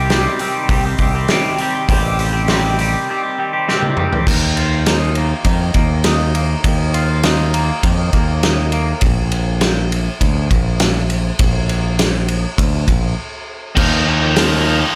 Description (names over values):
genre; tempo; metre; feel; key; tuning
quiet-loud alternative rock; 101 BPM; 4/4; straight; unclear; A4 = 439 Hz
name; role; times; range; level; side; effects
twangy electric guitar; arpeggios; 0.0-9.0 s; C3 to G4; -22 LUFS; equal; phaser, digital delay
growling fingered electric bass; bass; 0.0-14.8 s; A1 to F2; -20 LUFS; equal; overdrive
loose indie drum kit; drums; 0.1-14.5 s; crash cymbal, hi-hat, kick drum, ride cymbal, snare drum, toms; -20 LUFS; equal; none
distorted electric guitar; riff; 13.8-15.0 s; Eb3 to Eb4; -18 LUFS; equal; overdrive
room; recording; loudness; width
small room reverb; none; -16 LUFS; mono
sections
0.0-4.3 A section; 4.3-13.8 B section; 13.8-15.0 C section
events
drum fill 3.7-4.3; break 13.2-13.8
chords
0.0 Cm; 4.3 Ebsus2; 9.0 N.C.; 13.8 Ebsus2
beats
0.09 0.69 1.29 | 1.88 2.48 3.08 3.67 | 4.27 4.86 5.46 6.05 | 6.65 7.24 7.84 8.43 | 9.02 9.62 10.21 10.81 | 11.40 11.99 12.59 13.18 | 13.77 14.36